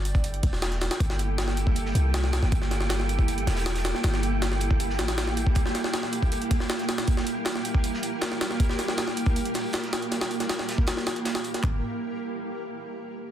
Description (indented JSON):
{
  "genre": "drum and bass, jungle",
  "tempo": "158 BPM",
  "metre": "4/4",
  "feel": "straight",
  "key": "G dorian",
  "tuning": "A4 = 440 Hz",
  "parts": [
    { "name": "granular cloud pad", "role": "sustained chords", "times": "0.0-11.8 s", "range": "Bb3 to Bb4", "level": "-31 LUFS", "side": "right 1 dB", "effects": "built-in reverb" },
    { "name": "warm 808-style bass", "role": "bass", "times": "0.0-5.5, 11.6-11.8 s", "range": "E1 to C2", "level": "-27 LUFS", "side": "equal", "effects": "none" },
    { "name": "wind-like tuned noise texture", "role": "texture", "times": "0.0-11.6 s", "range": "G5", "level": "-37 LUFS", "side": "right 3 dB", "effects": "built-in reverb" },
    { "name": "crunchy breakbeat drum kit", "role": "drums", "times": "0.1-11.5 s", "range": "hi-hat, snare drum", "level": "-40 LUFS", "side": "right 2 dB", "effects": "high-pass filter on hats, high-pass filter on snare, high-pass filter on room" },
    { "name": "jungle sampler-style drum kit", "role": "drums", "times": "0.1-11.7 s", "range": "handclaps, hi-hat, kick drum, snare drum, toms", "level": "-26 LUFS", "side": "equal", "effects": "none" }
  ],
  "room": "light reverb",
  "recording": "dense, heavily limited modern master",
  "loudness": "-24 LUFS",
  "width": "side -10 dB against mid",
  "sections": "0.0-11.6 A section; 11.6-13.2 B section",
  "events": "none",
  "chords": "0.0 Gm69"
}